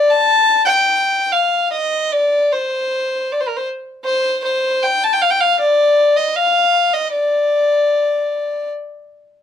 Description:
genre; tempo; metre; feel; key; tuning
celtic folk; 77 BPM; 3/4; uneven beats, rubato; unclear; A4 = 440 Hz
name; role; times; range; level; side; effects
warm fiddle; solo; 0.0-8.7 s; Bb4 to A5; -14 LUFS; left 2 dB; none
room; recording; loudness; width
light reverb; band playing live in one room; -14 LUFS; side -9 dB against mid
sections
0.0-9.4 A section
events
none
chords
none

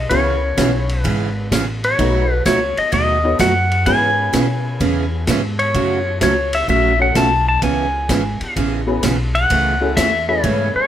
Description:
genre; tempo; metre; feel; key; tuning
country, western swing; 128 BPM; 4/4; swing 68% on 8ths; unclear; A4 = 440 Hz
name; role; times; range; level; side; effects
pedal steel guitar; melody; 0.0-10.9 s; C#5 to A5; -18 LUFS; left 1 dB; none
upright bass; bass; 0.0-10.8 s; G#1 to B2; -20 LUFS; left 1 dB; none
honky-tonk upright piano; accompaniment; 0.1-10.9 s; A3 to C#5; -23 LUFS; left 3 dB; none
picked steel-string acoustic guitar; accompaniment; 0.1-10.7 s; B2 to G#4; -20 LUFS; right 5 dB; none
vintage drum kit; drums; 0.1-10.6 s; hi-hat, kick drum, ride cymbal, snare drum; -24 LUFS; left 1 dB; none
room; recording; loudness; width
light reverb; none; -14 LUFS; side -10 dB against mid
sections
0.0-10.9 A section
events
none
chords
0.1 C#m7; 2.0 B7; 3.9 C#m7; 5.7 F#m; 7.6 C#m7; 9.5 Amaj7

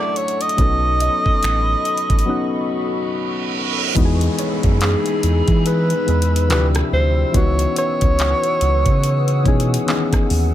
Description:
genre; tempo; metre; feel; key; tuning
contemporary R&B; 71 BPM; 4/4; swing 58% on 16ths; E major; A4 = 440 Hz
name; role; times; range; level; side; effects
mellow alto saxophone; melody; 0.0-10.3 s; G#4 to D#5; -21 LUFS; right 1 dB; ping-pong delay
soft electric-piano-like synth keys; accompaniment; 0.0-10.5 s; C3 to B4; -22 LUFS; left 3 dB; chorus
glassy FM pad; sustained chords; 0.0-10.5 s; D#4 to E6; -28 LUFS; left 2 dB; ensemble chorus, built-in reverb
smooth R&B drum kit; drums; 0.0-10.5 s; finger snaps, handclaps, hi-hat, kick drum, rim click; -20 LUFS; equal; none
soft round pluck; texture; 0.0-10.2 s; G#4 to D#5; -33 LUFS; left 1 dB; none
round analog bass; bass; 0.6-10.5 s; A1 to E3; -18 LUFS; equal; none
reverse cymbal and downlifter; sound effects; 3.0-10.5 s; none; -28 LUFS; right 4 dB; none
room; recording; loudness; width
little or no reverb; none; -15 LUFS; side -12 dB against mid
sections
0.0-4.0 A section; 4.0-10.5 B section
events
break 2.3-4.0; reverse cymbal 3.0-4.0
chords
0.0 Dmaj7; 0.6 B9; 4.0 Emaj7; 6.5 Dm11; 7.3 C#m11

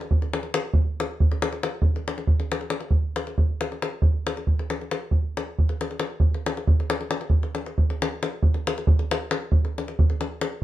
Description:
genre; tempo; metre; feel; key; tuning
balkan folk; 274 BPM (eighths); 5/8; straight; none; none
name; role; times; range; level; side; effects
davul; percussion; 0.0-10.6 s; none; -22 LUFS; equal; none
room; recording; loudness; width
light reverb; minimal, uncompressed stereo recording; -22 LUFS; side -14 dB against mid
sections
0.0-7.3 A section; 7.3-10.6 B section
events
none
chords
none

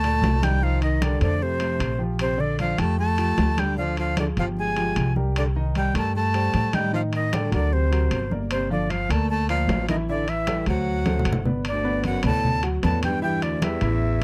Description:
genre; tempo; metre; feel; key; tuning
Afro-Cuban jazz; 152 BPM; 4/4; straight; G minor; A4 = 440 Hz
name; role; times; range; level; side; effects
breathy bright jazz flute; melody; 0.0-14.2 s; C5 to A5; -29 LUFS; equal; none
breathy baritone saxophone; second line; 0.0-14.2 s; D2 to A3; -31 LUFS; equal; none
warm concert grand piano; accompaniment; 0.0-14.2 s; Bb2 to F#5; -32 LUFS; equal; none
upright bass; bass; 0.0-14.2 s; G1 to A2; -27 LUFS; equal; none
congas; percussion; 0.0-14.2 s; none; -32 LUFS; equal; none
timbales; percussion; 0.0-14.2 s; none; -36 LUFS; equal; none
room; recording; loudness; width
light reverb; dry, close 1970s-style studio recording; -23 LUFS; mono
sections
0.0-11.7 A section; 11.7-14.2 B section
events
drum fill 11.1-11.7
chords
0.0 Gmadd9; 0.6 Cm7; 1.4 F; 2.2 Bb6; 3.8 Ddim; 4.6 Abmaj13/G; 5.4 Cm7; 6.9 Ebmaj7#11; 7.7 Daug7; 8.5 Gm9; 10.1 Am7; 10.9 D6; 11.7 Gmaj7; 13.2 Em

